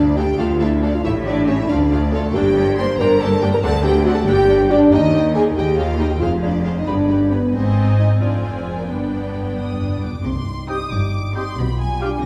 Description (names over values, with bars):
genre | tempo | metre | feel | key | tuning
quick classical-period movement for symphony orchestra | 92 BPM (dotted quarters) | 6/8 | rubato | D minor, C minor from 4.9 s | A4 = 439 Hz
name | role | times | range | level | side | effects
clear studio violin section | melody | 0.0-12.3 s | Ab4 to Eb6 | -33 LUFS | equal | none
rich studio violin section | second line | 0.0-12.2 s | G4 to B5 | -34 LUFS | equal | none
rich studio viola section | accompaniment | 0.0-12.2 s | Ab3 to Ab4 | -29 LUFS | equal | none
dark French horn section | sustained chords | 0.0-12.3 s | G3 to C5 | -21 LUFS | equal | none
clear studio cello section | bass | 0.0-12.3 s | D2 to C3 | -25 LUFS | equal | none
clear studio double bass section | bass | 0.0-12.3 s | F1 to Eb2 | -25 LUFS | equal | none
timpani | percussion | 8.9-10.2 s | G2 | -31 LUFS | equal | none
bright oboe | second line | 10.7-12.1 s | F5 to G5 | -38 LUFS | equal | none
mellow clarinet | second line | 10.7-12.1 s | G4 | -32 LUFS | equal | none
mellow large flute ensemble | second line | 10.7-12.1 s | D6 to Eb6 | -36 LUFS | equal | none
room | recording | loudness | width
wet scoring stage reverb, RT60 1.6 s | heard from further back in the room | -18 LUFS | mono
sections
0.0-10.3 A section; 10.3-12.3 B section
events
timpani fill 8.9-10.3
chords
0.0 Dm; 1.0 A7; 1.7 Dm; 2.3 Gm; 3.6 D7; 4.3 Gm; 4.9 Eb; 6.2 Fm; 6.9 G; 7.5 Ab; 8.2 Dm7b5/F; 8.9 G; 10.3 Cm; 11.6 G7/B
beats
0.39 | 1.04 1.70 | 2.35 2.99 | 3.63 4.28 | 4.93 5.57 | 6.22 6.87 | 7.54 8.20 | 8.88 9.57 | 10.25 10.92 | 11.58 12.23